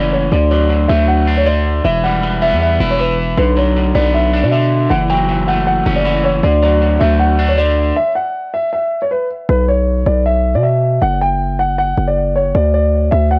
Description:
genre	hip hop, trap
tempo	157 BPM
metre	4/4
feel	half-time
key	B minor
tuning	A4 = 445 Hz
part	dark grand piano	melody	0.0-13.4 s	B4 to G5	-18 LUFS	equal	low-pass filter, cassette tape, analog delay
part	electric guitar at the edge of break-up	accompaniment	0.0-8.0 s	D3 to E4	-20 LUFS	equal	low-pass filter, cassette tape
part	distorted 808-style bass	bass	0.0-13.4 s	E1 to B2	-18 LUFS	equal	distortion
room	light reverb, studio ambience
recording	home recording on cassette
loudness	-15 LUFS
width	mono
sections	0.0-9.5 A section; 9.5-13.4 B section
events	stop 8.0-9.5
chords	0.3 D; 1.8 Em; 3.4 Bm; 4.9 F#m7; 6.4 D; 8.0 N.C.; 9.5 Bsus4; 11.0 Dadd11/F# (rootless); 12.5 N.C.

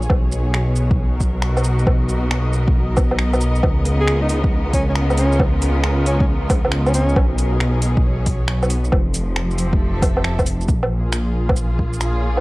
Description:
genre	future garage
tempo	136 BPM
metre	4/4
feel	swing 66% on 16ths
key	Bb phrygian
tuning	A4 = 440 Hz
part	rich symphonic string section	sustained chords	0.0-12.4 s	Bb2 to E5	-25 LUFS	equal	sidechain pumping
part	dark detuned saw bass	bass	0.0-12.4 s	F1 to Db2	-19 LUFS	equal	none
part	deep house drum kit	drums	0.0-12.4 s	finger snaps, hi-hat, shaker, woodblock	-23 LUFS	right 1 dB	overdrive, vintage 12-bit sampler grit
part	electronic kick drum	drums	0.1-11.9 s	none	-19 LUFS	equal	overdrive, vintage 12-bit sampler grit
part	breathy alto saxophone	melody	4.0-7.2 s	Db4 to Ab4	-24 LUFS	equal	vintage 12-bit sampler grit, analog delay
room	little or no reverb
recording	cassette tape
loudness	-16 LUFS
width	side -21 dB against mid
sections	0.0-10.7 A section; 10.7-12.4 B section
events	none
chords	0.1 Abm9/Cb; 3.6 Db13; 7.2 B69; 8.9 Fmaj7; 10.7 Bbm7

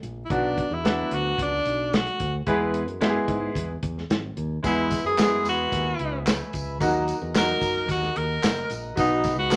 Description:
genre	uptempo 1960s-style soul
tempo	111 BPM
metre	4/4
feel	straight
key	unclear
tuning	A4 = 440 Hz
part	fingered electric bass	bass	0.0-9.6 s	F#1 to G#2	-34 LUFS	equal	none
part	warm soul drum kit	drums	0.0-9.6 s	hi-hat, kick drum, snare drum	-29 LUFS	equal	none
part	bright tenor saxophone	melody	0.2-9.6 s	D4 to A#4	-28 LUFS	equal	none
part	bright upright piano	accompaniment	0.3-9.6 s	F#3 to G#4	-28 LUFS	equal	none
part	warm horn section	second line	2.5-2.9 s	G#3 to B4	-34 LUFS	equal	none
part	mellow tonewheel organ	sustained chords	4.6-9.6 s	A#4 to B5	-39 LUFS	equal	slow rotary speaker
part	tambourine and handclaps	percussion	4.6-9.6 s	none	-37 LUFS	equal	none
room	moderate club reverb, RT60 0.7 s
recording	none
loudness	-25 LUFS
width	mono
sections	0.0-9.6 A section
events	band accent 2.5-4.6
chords	0.3 Bm; 2.5 E; 6.8 D#m; 9.0 B

